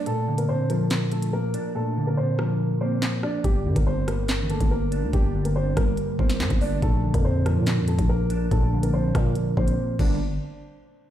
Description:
hip hop, drill; 142 BPM; 4/4; half-time; A4 = 440 Hz
dark baby grand piano; melody; 0.0-10.2 s; G3 to D5; -29 LUFS; equal; low-pass filter, tape echo
mellow electric guitar; accompaniment; 0.0-10.2 s; G2 to D4; -25 LUFS; equal; ensemble chorus, low-pass filter
drill drum kit; drums; 0.1-10.1 s; crash cymbal, handclaps, hi-hat, kick drum, rim click, snare drum; -25 LUFS; equal
growling 808-style bass; bass; 3.4-10.4 s; G1 to Bb2; -26 LUFS; equal
little or no reverb; played on a big sound system in a bare room, stone room reverb; -21 LUFS; side -11 dB against mid
0.0-10.2 A section
break 0.0-3.4; hi-hats muted 1.8-3.4; drums muted 9.8-10.2
0.1 Bb; 3.4 Gm; 6.8 Bb; 10.0 Gm; 10.2 N.C.

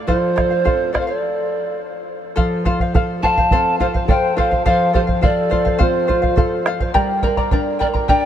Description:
andean folk, Andean ensemble; 105 BPM; 4/4; straight; A4 = 440 Hz
charango; accompaniment; 0.0-8.3 s; G4 to Bb5; -22 LUFS; left 3 dB
mellow hollow polished pan flute; melody; 0.1-8.3 s; C5 to A5; -20 LUFS; right 3 dB
mellow large quena; second line; 0.1-8.3 s; F4 to G5; -25 LUFS; left 6 dB
nylon-string guitar; accompaniment; 0.1-8.3 s; F3 to Bb4; -23 LUFS; equal
bombo; percussion; 0.1-8.2 s; -19 LUFS; right 1 dB
moderate huge ambient reverb, RT60 7.9 s; -15 LUFS; side -10 dB against mid
0.0-2.4 A section; 2.4-8.3 B section
stop 1.2-2.4
0.1 F; 1.2 N.C.; 2.4 F; 6.9 Gm

